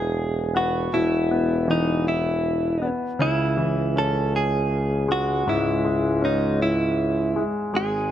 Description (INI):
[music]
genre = six-eight pop ballad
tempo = 53 BPM (dotted quarters)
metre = 6/8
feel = straight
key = C# minor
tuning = A4 = 440 Hz
[part]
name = direct-recorded clean electric guitar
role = melody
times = 0.0-8.1 s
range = D#4 to A4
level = -23 LUFS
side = equal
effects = wide subtle chorus
[part]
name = clear concert grand piano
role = accompaniment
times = 0.0-8.1 s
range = G#2 to C#4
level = -27 LUFS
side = left 2 dB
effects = none
[part]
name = clear tuba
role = bass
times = 0.0-8.1 s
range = E1 to C#2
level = -25 LUFS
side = right 1 dB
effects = none
[sound]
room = light reverb, small room ambience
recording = none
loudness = -20 LUFS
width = side -11 dB against mid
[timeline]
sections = 0.0-8.1 A section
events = none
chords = 0.0 E5; 3.2 C#m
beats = | 0.93 2.06 | 3.20 4.33 | 5.47 6.60 | 7.74